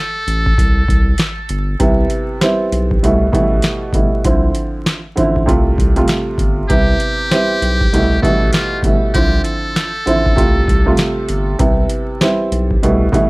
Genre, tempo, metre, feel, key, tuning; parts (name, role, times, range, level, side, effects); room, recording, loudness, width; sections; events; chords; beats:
hip hop, boom-bap hip-hop; 98 BPM; 4/4; swing 63% on 16ths; C major; A4 = 440 Hz
trumpet with metal mute; melody; 0.0-1.1, 6.7-10.9 s; F4 to A4; -22 LUFS; equal; high-pass filter, low-pass filter, tape echo
saturated sub bass; bass; 0.3-13.3 s; G1 to C2; -17 LUFS; equal
booming analog drum machine; drums; 0.3-13.3 s; hi-hat, kick drum, snare drum; -16 LUFS; equal
dark upright piano; accompaniment; 1.8-13.3 s; B2 to F4; -16 LUFS; right 1 dB; high-pass filter, low-pass filter
light reverb; vinyl crackle; -12 LUFS; side -24 dB against mid
0.0-13.3 A section
break 0.0-1.8
0.0 N.C.; 0.6 Gsus24/C; 1.8 Cmaj7; 3.0 G69; 4.2 Dm9/C; 5.5 G9sus4/C; 6.7 Cmaj7; 7.9 G13; 9.1 Dm9/C; 10.4 G9sus4/C; 11.6 Cmaj7
0.57 1.19 | 1.80 2.41 3.02 3.64 | 4.25 4.86 5.47 6.08 | 6.70 7.31 7.92 8.53 | 9.15 9.76 10.37 10.98 | 11.60 12.21 12.82